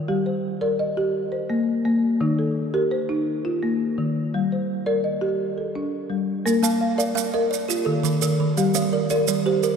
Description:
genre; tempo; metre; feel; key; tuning
southern african traditional, mbira-style interlocking cycle; 113 BPM (dotted quarters); 12/8; straight; unclear; A4 = 435 Hz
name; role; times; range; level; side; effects
folk marimba with soft mallets; arpeggios; 0.0-9.6 s; Eb3 to A5; -21 LUFS; left 1 dB; none
maracas; percussion; 6.5-9.8 s; none; -29 LUFS; right 10 dB; none
kalimba; arpeggios; 6.6-9.8 s; Eb3 to F5; -24 LUFS; right 7 dB; none
room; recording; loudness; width
wet cathedral reverb, RT60 5.2 s; recorded in a church or concert hall; -20 LUFS; side -6 dB against mid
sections
0.0-6.5 A section; 6.5-9.8 B section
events
none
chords
0.1 Gm; 1.1 Bbsus2; 2.2 Eb; 4.3 Gm; 6.5 Bb; 7.5 Eb; 8.6 Gm

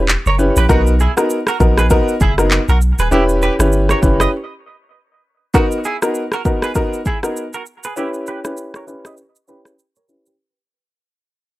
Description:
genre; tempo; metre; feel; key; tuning
afrobeats; 99 BPM; 4/4; swing 58% on 16ths; B major; A4 = 441 Hz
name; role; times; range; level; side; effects
punchy sub bass; bass; 0.0-4.3 s; D#1 to B1; -15 LUFS; equal; none
afro-pop drum kit; drums; 0.1-10.4 s; handclaps, kick drum, rim click, shaker; -18 LUFS; equal; none
direct-recorded clean electric guitar; riff; 0.3-10.4 s; D#4 to D#5; -22 LUFS; right 3 dB; lush chorus, low-pass filter, analog delay
warm grand piano; accompaniment; 0.4-10.3 s; B3 to B4; -17 LUFS; left 1 dB; low-pass filter
room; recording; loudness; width
little or no reverb; dry, gritty hardware recording; -13 LUFS; side -17 dB against mid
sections
0.0-5.5 A section; 5.5-10.4 B section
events
break 4.3-5.5, 8.0-10.4; fade-out 5.5-10.4; filter sweep 5.5-10.4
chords
0.0 Em6; 0.7 Bmaj7; 3.1 Em6; 5.5 Bmaj7; 8.0 Em6

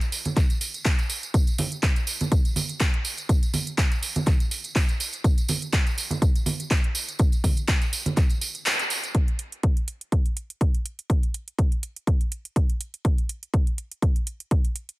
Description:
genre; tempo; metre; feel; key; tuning
house; 123 BPM; 4/4; swing 55% on 16ths; none; none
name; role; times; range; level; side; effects
house drum kit; drums; 0.0-15.0 s; handclaps, hi-hat; -29 LUFS; right 1 dB; none
tambourine and congas; percussion; 0.0-9.1 s; none; -30 LUFS; right 2 dB; none
electronic kick drum; drums; 0.4-14.6 s; none; -21 LUFS; equal; none
room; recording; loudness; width
little or no reverb; none; -22 LUFS; side -20 dB against mid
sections
0.0-9.1 A section; 9.1-15.0 B section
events
kick drops out 8.7-9.1; band accent 8.7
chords
none

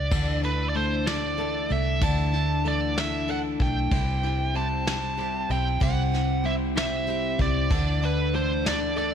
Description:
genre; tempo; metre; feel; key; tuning
six-eight pop ballad; 63 BPM (dotted quarters); 6/8; straight; unclear; A4 = 440 Hz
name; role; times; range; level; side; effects
biting lead guitar; melody; 0.0-9.1 s; B4 to A5; -29 LUFS; right 2 dB; overdrive, ping-pong delay
nylon-string guitar; accompaniment; 0.0-9.1 s; C3 to B4; -30 LUFS; left 1 dB; double-tracked left and right
vintage muted fingered electric bass; bass; 0.0-9.1 s; B1 to D2; -28 LUFS; equal; none
twelve-string electric guitar; arpeggios; 0.1-9.1 s; C3 to A4; -35 LUFS; left 7 dB; ping-pong delay
vintage brush drum kit; drums; 0.1-9.1 s; crash cymbal, kick drum, ride cymbal, snare drum; -30 LUFS; equal; none
room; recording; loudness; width
light reverb, studio reverb; none; -23 LUFS; side -8 dB against mid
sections
0.1-9.1 A section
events
none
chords
0.1 Dsus2; 3.9 C; 7.7 Dsus2

